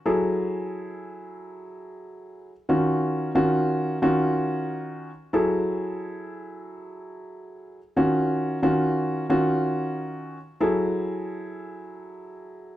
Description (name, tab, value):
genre	hip hop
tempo	91 BPM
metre	4/4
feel	swing 57% on 16ths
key	unclear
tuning	A4 = 440 Hz
part	dark concert grand piano	solo	0.1-12.8 s	Eb3 to A4	-24 LUFS	equal	none
room	light reverb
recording	dark, warm production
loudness	-22 LUFS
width	side -14 dB against mid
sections	0.0-12.8 A section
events	none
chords	0.1 Gbm9; 2.7 Ebm9; 5.3 Gbm9; 8.0 Ebm9; 10.6 Gbm9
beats	| 0.06 0.72 1.38 2.04 | 2.70 3.36 4.02 4.68 | 5.33 5.99 6.65 7.31 | 7.97 8.63 9.29 9.95 | 10.61 11.27 11.93 12.59